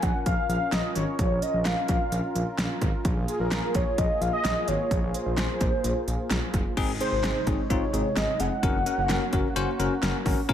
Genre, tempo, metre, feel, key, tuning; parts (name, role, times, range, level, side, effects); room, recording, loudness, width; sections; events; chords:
synth-pop; 129 BPM; 4/4; straight; Bb minor; A4 = 442 Hz
warm velvety synth lead; melody; 0.0-9.8 s; Ab4 to Gb5; -29 LUFS; equal; chorus, dub echo
brassy analog pad; sustained chords; 0.0-10.5 s; C3 to Bb4; -33 LUFS; right 1 dB; chorus
smooth gliding synth bass; bass; 0.0-10.5 s; F1 to Bb1; -30 LUFS; equal
pop drum kit; drums; 0.0-10.5 s; crash cymbal, hi-hat, kick drum, snare drum; -28 LUFS; equal; overdrive, dub echo
bell-like tine electric piano; accompaniment; 6.8-10.5 s; C4 to C5; -29 LUFS; left 5 dB; dub echo
moderate spring reverb, RT60 1.3 s, digital ambience; echo-heavy mix; -23 LUFS; side -10 dB against mid
0.0-6.8 A section; 6.8-10.5 B section
0.0 Bbm; 3.0 Fm; 6.8 Ab; 8.6 Gb